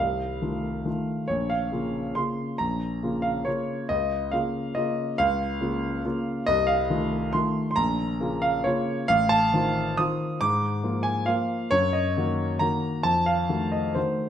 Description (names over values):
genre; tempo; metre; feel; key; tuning
classical, piano waltz; 138 BPM; 3/4; uneven beats, rubato; Bb minor; A4 = 439 Hz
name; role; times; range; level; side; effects
clear grand piano; solo; 0.0-14.3 s; A1 to Eb6; -23 LUFS; equal; none
room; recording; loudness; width
moderate recital hall reverb, RT60 1.4 s; none; -23 LUFS; side -9 dB against mid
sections
0.0-14.3 A section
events
none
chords
0.0 F7/C; 1.3 Bbm; 3.9 Bbm/Db; 6.5 F7/C; 7.8 Bbm; 9.1 F7/A; 10.4 Bb7/Ab; 11.7 Ebm/Gb; 13.1 F7b9